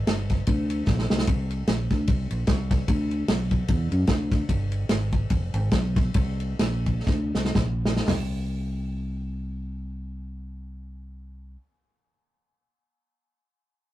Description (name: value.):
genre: uptempo gospel.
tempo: 112-150 BPM.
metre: 4/4.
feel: swing 58% on 8ths.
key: unclear.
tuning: A4 = 440 Hz.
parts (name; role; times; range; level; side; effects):
fingered electric bass; bass; 0.0-11.6 s; F1 to F#2; -27 LUFS; equal; none.
warm soul drum kit; drums; 0.1-8.2 s; hi-hat, kick drum, ride cymbal, snare drum, toms; -24 LUFS; equal; none.
room: moderate studio ambience, RT60 0.5 s.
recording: rough rehearsal-room recording, tube saturation.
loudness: -22 LUFS.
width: side -15 dB against mid.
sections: 0.0-1.3 A section; 1.3-8.1 B section; 8.1-12.4 C section.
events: drum fill 0.9-1.3, 7.1-8.1; slowing down 4.5-8.1.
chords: none.